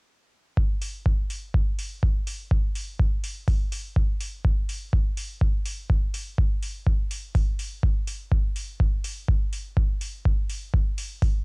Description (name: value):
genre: acid house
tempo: 124 BPM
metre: 4/4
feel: swing 55% on 16ths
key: none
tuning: none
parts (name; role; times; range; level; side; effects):
- electronic kick drum; drums; 0.6-11.3 s; none; -23 LUFS; equal; overdrive, cassette tape
- electronic hi-hat; drums; 0.8-11.3 s; none; -37 LUFS; equal; overdrive, cassette tape
room: little or no reverb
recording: home recording on cassette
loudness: -23 LUFS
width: side -38 dB against mid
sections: 0.6-11.4 A section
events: none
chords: none